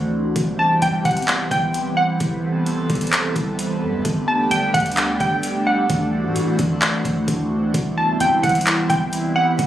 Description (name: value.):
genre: hip hop, atmospheric cloud-rap.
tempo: 130 BPM.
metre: 4/4.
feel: half-time.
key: unclear.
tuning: A4 = 439 Hz.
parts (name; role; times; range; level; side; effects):
airy breathy pad; sustained chords; 0.0-9.7 s; E3 to A4; -22 LUFS; right 1 dB; chorus, phaser, sidechain pumping.
soft 808-style bass; bass; 0.0-9.7 s; G1 to A2; -27 LUFS; equal; none.
smooth R&B drum kit; drums; 0.4-9.7 s; handclaps, hi-hat, kick drum; -22 LUFS; equal; none.
warbly dusty pluck; melody; 0.6-9.6 s; F#5 to A5; -20 LUFS; equal; chorus, tape echo.
room: light reverb.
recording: recorded on a phone in the room, studio reverb.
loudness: -17 LUFS.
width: side -12 dB against mid.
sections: 0.0-7.7 A section; 7.7-9.7 B section.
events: none.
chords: 0.4 Cmaj7; 4.0 Gmaj9; 5.9 D9; 7.7 Cmaj7.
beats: | 0.36 0.82 1.28 1.74 | 2.20 2.67 3.13 3.59 | 4.05 4.51 4.97 5.43 | 5.90 6.36 6.82 7.28 | 7.74 8.20 8.67 9.13 | 9.59.